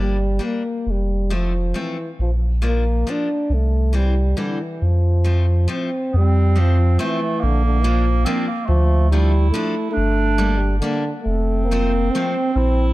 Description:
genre	alpine folk, alpine dance band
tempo	138 BPM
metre	3/4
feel	rubato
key	F major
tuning	A4 = 440 Hz
part	mellow euphonium	melody	0.0-12.9 s	D3 to D4	-23 LUFS	equal	none
part	picked steel-string acoustic guitar	accompaniment	0.0-12.3 s	E3 to D4	-28 LUFS	left 2 dB	none
part	warm sub bass	bass	0.0-12.9 s	F1 to F2	-17 LUFS	equal	none
part	dark clarinet	second line	6.1-12.9 s	A3 to E4	-23 LUFS	right 4 dB	none
room	light reverb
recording	dark, warm production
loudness	-17 LUFS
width	side -17 dB against mid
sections	0.0-6.1 A section; 6.1-12.9 A section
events	none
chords	0.0 Gm; 0.9 F; 2.2 Bb; 3.5 C; 4.8 F; 7.4 Bb; 8.7 Dm; 10.0 Gm; 11.3 F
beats	0.41 | 0.87 1.32 1.76 | 2.20 2.63 3.07 | 3.51 3.94 4.37 | 4.81 5.24 5.68 | 6.13 6.57 7.00 | 7.43 7.85 8.28 | 8.70 9.12 9.54 | 9.97 10.39 10.83 | 11.27 11.70 12.13 | 12.56

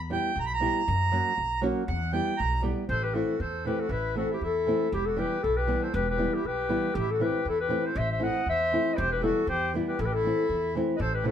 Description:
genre	balkan folk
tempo	118 BPM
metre	2/4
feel	straight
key	A minor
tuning	A4 = 439 Hz
part	upright bass	bass	0.0-11.3 s	E1 to F#2	-32 LUFS	equal	none
part	accordion	second line	0.1-11.3 s	E4 to B5	-32 LUFS	right 3 dB	none
part	nylon-string guitar	accompaniment	0.1-11.3 s	C3 to G4	-30 LUFS	equal	none
part	warm clarinet	melody	2.9-11.3 s	G4 to F#5	-28 LUFS	left 3 dB	none
room	moderate studio reverb, RT60 0.7 s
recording	band playing live in one room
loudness	-25 LUFS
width	side -9 dB against mid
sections	0.0-2.9 A section; 2.9-11.0 B section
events	accordion solo 0.0-2.9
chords	0.0 Em; 0.9 F#; 1.9 Em; 2.9 Am; 4.9 Em; 6.9 Am; 9.0 Em; 10.0 Am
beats	0.37 | 0.87 1.38 | 1.88 2.39 | 2.90 3.40 | 3.91 4.41 | 4.92 5.42 | 5.93 6.44 | 6.95 7.45 | 7.96 8.46 | 8.97 9.48 | 9.98 10.49 | 11.00

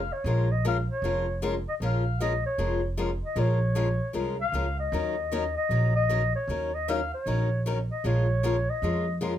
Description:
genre	acoustic string swing (jazz manouche)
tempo	154 BPM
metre	4/4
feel	swing 63% on 8ths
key	Bb minor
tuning	A4 = 439 Hz
part	breathy clarinet	melody	0.0-9.2 s	Db5 to F5	-29 LUFS	left 1 dB	none
part	upright bass	bass	0.0-9.4 s	F1 to F2	-28 LUFS	right 1 dB	none
part	picked steel-string acoustic guitar	accompaniment	0.3-9.3 s	Eb3 to Bb4	-31 LUFS	left 4 dB	none
room	light reverb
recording	none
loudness	-24 LUFS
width	side -11 dB against mid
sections	0.0-9.4 A section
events	none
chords	0.0 Bbm7; 4.9 Ebm7; 8.0 Bbm7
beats	| 0.26 0.65 1.03 1.42 | 1.81 2.20 2.59 2.98 | 3.37 3.76 4.15 4.54 | 4.93 5.32 5.71 6.09 | 6.49 6.88 7.26 7.66 | 8.04 8.44 8.82 9.21

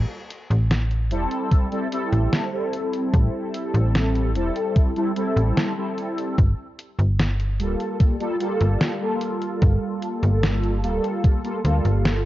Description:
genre	vaporwave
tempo	74 BPM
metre	4/4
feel	straight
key	G dorian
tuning	A4 = 442 Hz
part	slap-like FM bass	bass	0.0-12.3 s	D1 to D2	-20 LUFS	equal	tube saturation
part	detuned 8-bit digital drum machine	drums	0.3-12.2 s	hi-hat, snare drum	-26 LUFS	equal	vintage 12-bit sampler grit, studio reverb
part	mellow synth brass	accompaniment	1.1-12.2 s	G3 to A4	-24 LUFS	equal	phaser, analog chorus, analog delay
part	electronic kick drum	drums	1.5-11.4 s	none	-18 LUFS	equal	overdrive, vintage 12-bit sampler grit, studio reverb
room	light reverb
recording	dark, warm production, cassette tape, nothing above 7.5 kHz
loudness	-20 LUFS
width	side -15 dB against mid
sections	0.0-12.3 A section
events	none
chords	0.0 Am7; 6.4 Gm9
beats	0.70 1.51 2.33 | 3.14 3.95 4.76 5.57 | 6.38 7.19 8.00 8.81 | 9.62 10.43 11.24 12.05

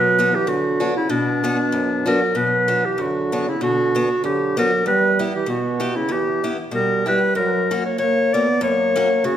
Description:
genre	alpine folk, alpine dance band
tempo	96 BPM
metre	2/4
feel	swing 54% on 8ths, rubato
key	B harmonic minor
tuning	A4 = 435 Hz
part	clear clarinet	melody	0.0-9.4 s	D4 to D5	-19 LUFS	left 1 dB	none
part	warm euphonium	second line	0.0-9.4 s	B2 to B3	-24 LUFS	right 4 dB	none
part	picked acoustic archtop guitar	accompaniment	0.0-9.4 s	E2 to G4	-25 LUFS	left 2 dB	none
room	wet recital hall reverb, RT60 1.5 s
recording	none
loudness	-17 LUFS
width	side -10 dB against mid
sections	0.0-2.4 A section; 2.4-9.4 A section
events	none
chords	0.0 Bm; 4.9 Em; 7.3 F#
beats	0.49 | 1.10 1.72 | 2.36 2.99 | 3.61 4.24 | 4.85 5.46 | 6.08 6.71 | 7.34 7.97 | 8.60 9.22

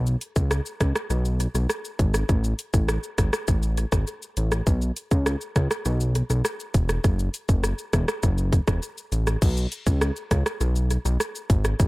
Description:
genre	dancehall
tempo	101 BPM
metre	4/4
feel	straight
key	unclear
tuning	A4 = 442 Hz
part	fat analog bass	bass	0.0-11.9 s	E1 to C#2	-23 LUFS	equal	none
part	island pop drum kit	drums	0.1-11.9 s	crash cymbal, hi-hat, kick drum, rim click, shaker	-24 LUFS	equal	tape echo
room	digital ambience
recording	echo-heavy mix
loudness	-22 LUFS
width	side -21 dB against mid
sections	0.0-9.4 A section; 9.4-11.9 B section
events	none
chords	none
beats	0.51 1.10 1.70 | 2.29 2.88 3.48 4.07 | 4.67 5.26 5.86 6.45 | 7.04 7.64 8.23 8.83 | 9.42 10.01 10.61 11.20 | 11.80

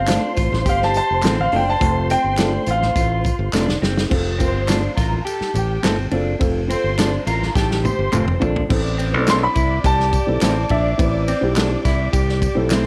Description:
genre	uptempo 1960s-style soul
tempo	105 BPM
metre	4/4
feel	straight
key	A minor from 8.7 s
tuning	A4 = 440 Hz
part	warm grand piano	melody	0.0-3.5, 9.3-11.5 s	E5 to C6	-23 LUFS	equal	none
part	muted studio string section	second line	0.0-12.9 s	G4 to D6	-30 LUFS	equal	none
part	modern bright fingered electric bass	bass	0.0-12.9 s	F1 to C2	-24 LUFS	equal	none
part	dark upright piano	accompaniment	0.1-12.9 s	Ab3 to C5	-27 LUFS	equal	none
part	electric guitar through a small old amp	riff	0.1-12.9 s	C4 to G4	-28 LUFS	equal	none
part	mellow electric guitar	stabs	0.1-12.8 s	A3 to A4	-28 LUFS	equal	none
part	natural country drum kit	drums	0.1-12.8 s	crash cymbal, hi-hat, kick drum, ride cymbal, snare drum, toms	-25 LUFS	equal	none
part	congas	percussion	0.1-8.4 s	none	-35 LUFS	equal	none
part	handclaps and tambourine	percussion	0.1-12.8 s	none	-34 LUFS	equal	none
room	light reverb, studio reverb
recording	none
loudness	-19 LUFS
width	mono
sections	0.0-4.1 A section; 4.1-8.7 B section; 8.7-12.9 C section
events	grand piano solo 0.0-4.1; drum fill 3.5-4.1, 7.6-8.7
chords	0.0 F; 8.7 Am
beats	0.09 0.66 1.24 | 1.81 2.39 2.96 3.54 | 4.11 4.68 5.26 5.83 | 6.41 6.98 7.55 8.13 | 8.70 9.27 9.85 10.42 | 10.99 11.56 12.13 12.71

